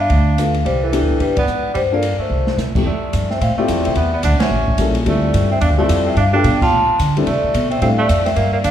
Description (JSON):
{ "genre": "jazz, small-group swing and bop", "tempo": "218 BPM", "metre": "4/4", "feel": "swing 61% on 8ths", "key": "C major", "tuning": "A4 = 439 Hz", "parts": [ { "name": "vibraphone with soft mallets", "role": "melody", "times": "0.0-8.7 s", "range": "A4 to A5", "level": "-20 LUFS", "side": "left 2 dB", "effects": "none" }, { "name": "breathy tenor saxophone", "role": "second line", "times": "0.0-8.7 s", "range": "E3 to F4", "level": "-22 LUFS", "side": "right 3 dB", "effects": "none" }, { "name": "upright bass", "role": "bass", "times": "0.0-8.7 s", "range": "A1 to D3", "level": "-18 LUFS", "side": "equal", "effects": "none" }, { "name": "open jazz drum kit", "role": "drums", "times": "0.1-8.7 s", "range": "crash cymbal, hi-hat, kick drum, ride cymbal, rim click, snare drum", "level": "-24 LUFS", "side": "right 1 dB", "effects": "none" }, { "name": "warm grand piano", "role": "accompaniment", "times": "0.4-8.0 s", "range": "F2 to A4", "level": "-22 LUFS", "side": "left 4 dB", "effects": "none" } ], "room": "wet scoring stage reverb, RT60 1.8 s", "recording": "recorded in a church or concert hall", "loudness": "-14 LUFS", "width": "side -10 dB against mid", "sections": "0.0-2.9 A section; 2.9-8.7 B section", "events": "band accent 1.3, 4.4, 6.6; drum fill 2.3", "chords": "0.0 G7 (rootless); 0.6 Cmaj9; 1.8 Gm7; 2.3 C6; 4.0 Dmaj13; 4.5 A7b9; 5.1 Dm11; 6.2 G9; 7.3 C6", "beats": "0.10 0.37 | 0.65 0.92 1.20 1.48 | 1.75 2.03 2.31 2.58 | 2.86 3.13 3.41 3.69 | 3.96 4.24 4.51 4.79 | 5.07 5.34 5.62 5.89 | 6.17 6.44 6.72 7.00 | 7.27 7.55 7.82 8.10 | 8.37 8.65" }